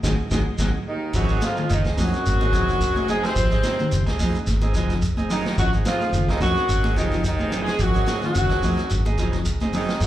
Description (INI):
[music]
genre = afrobeat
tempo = 108 BPM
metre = 4/4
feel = swing 54% on 16ths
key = Ab mixolydian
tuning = A4 = 440 Hz
[part]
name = reed electric piano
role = accompaniment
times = 0.0-0.7 s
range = Ab3 to Eb4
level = -36 LUFS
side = right 2 dB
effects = none
[part]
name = semi-hollow electric guitar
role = arpeggios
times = 0.0-10.1 s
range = Eb3 to Ab3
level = -29 LUFS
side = left 2 dB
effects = analog chorus
[part]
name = clean electric guitar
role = stabs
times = 0.0-9.9 s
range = Gb3 to Ab4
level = -30 LUFS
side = right 5 dB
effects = spring reverb, slapback echo
[part]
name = fingered electric bass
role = bass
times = 0.0-10.1 s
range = Gb1 to F2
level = -24 LUFS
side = equal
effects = none
[part]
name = vintage drum kit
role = drums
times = 0.0-10.1 s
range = crash cymbal, hi-hat, kick drum, snare drum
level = -27 LUFS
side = equal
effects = none
[part]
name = congas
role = percussion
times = 0.0-9.9 s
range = none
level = -30 LUFS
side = left 1 dB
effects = slapback echo
[part]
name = shekere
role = percussion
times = 0.0-10.1 s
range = none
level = -31 LUFS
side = equal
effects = none
[part]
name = mellow horn section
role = melody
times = 0.9-10.1 s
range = Eb4 to C5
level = -25 LUFS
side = equal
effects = slapback echo
[part]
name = muted trombone section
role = second line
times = 0.9-10.1 s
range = Eb2 to C3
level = -34 LUFS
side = left 1 dB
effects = slapback echo
[part]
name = raspy tenor saxophone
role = second line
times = 0.9-10.1 s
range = Eb3 to C4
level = -32 LUFS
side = right 1 dB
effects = slapback echo
[sound]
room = small room ambience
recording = live gig heard through the venue's PA, club ambience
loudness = -19 LUFS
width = side -13 dB against mid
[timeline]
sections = 0.0-1.1 A section; 1.1-10.1 B section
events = band accent 0.0-1.1; reed electric piano fill 0.0-1.1; drum fill 0.9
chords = 0.0 Ab7